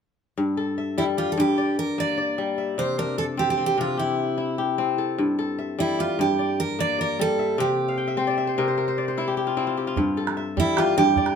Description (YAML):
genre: west african traditional, West African string and xylophone music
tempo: 100 BPM (dotted quarters)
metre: 12/8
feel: straight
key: G dorian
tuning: A4 = 440 Hz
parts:
  - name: kora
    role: arpeggios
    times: 0.4-11.4 s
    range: G2 to G5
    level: -24 LUFS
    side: left 4 dB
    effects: none
  - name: picked steel-string acoustic guitar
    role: melody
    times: 1.0-11.4 s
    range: E4 to D5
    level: -24 LUFS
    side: right 5 dB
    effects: none
  - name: calabash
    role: percussion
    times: 10.0-11.4 s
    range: none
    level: -28 LUFS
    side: right 7 dB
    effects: none
room: moderate studio reverb, RT60 0.6 s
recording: minimal, uncompressed stereo recording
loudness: -21 LUFS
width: side -7 dB against mid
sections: 0.4-10.0 A section; 10.0-11.4 A section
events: kora fill 7.9-10.0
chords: 0.4 Gm; 2.8 C; 5.2 Gm; 7.6 C; 10.0 G5